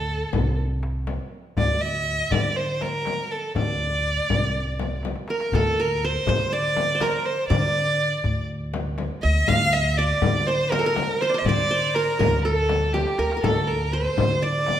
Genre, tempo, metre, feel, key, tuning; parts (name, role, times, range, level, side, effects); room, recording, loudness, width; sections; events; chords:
Arabic maqam ensemble; 122 BPM; 4/4; straight; D maqam bayati; A4 = 440 Hz
clear violin; melody; 0.0-14.8 s; G4 to F5; -24 LUFS; right 1 dB
upright bass; bass; 0.0-14.8 s; C2 to D3; -27 LUFS; equal
darbuka; percussion; 0.3-14.8 s; -30 LUFS; left 2 dB
frame drum; percussion; 0.3-14.8 s; -29 LUFS; left 5 dB
qanun; second line; 5.3-14.8 s; G4 to F5; -26 LUFS; right 2 dB
wet recital hall reverb, RT60 1.5 s; minimal, uncompressed stereo recording; -20 LUFS; side -10 dB against mid
0.0-5.5 A section; 5.5-14.8 B section
drum fill 5.0-5.5, 12.9-13.4